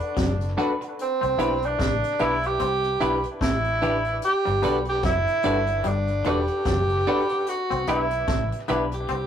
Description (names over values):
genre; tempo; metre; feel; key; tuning
lovers rock reggae; 74 BPM; 4/4; swing 58% on 16ths; unclear; A4 = 440 Hz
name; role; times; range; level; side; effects
warm tenor saxophone; melody; 0.0-9.3 s; C4 to G4; -24 LUFS; right 1 dB; none
barky tine electric piano; accompaniment; 0.0-8.8 s; D4 to B4; -31 LUFS; left 2 dB; dub echo
jazz brush drum kit; drums; 0.0-9.3 s; hi-hat, kick drum, snare drum; -30 LUFS; equal; none
twangy electric guitar; riff; 0.2-9.3 s; E3 to C4; -32 LUFS; left 4 dB; none
vintage muted fingered electric bass; bass; 0.2-9.3 s; E1 to C2; -29 LUFS; equal; none
twelve-string electric guitar; stabs; 0.6-8.8 s; D4 to B4; -29 LUFS; equal; spring reverb
room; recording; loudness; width
wet studio reverb, RT60 0.5 s; rough rehearsal-room recording, tube saturation; -21 LUFS; side -9 dB against mid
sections
0.0-9.3 A section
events
none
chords
0.0 Gmaj7 (rootless); 1.0 Cmaj7; 4.2 Gmaj7; 7.5 Cmaj7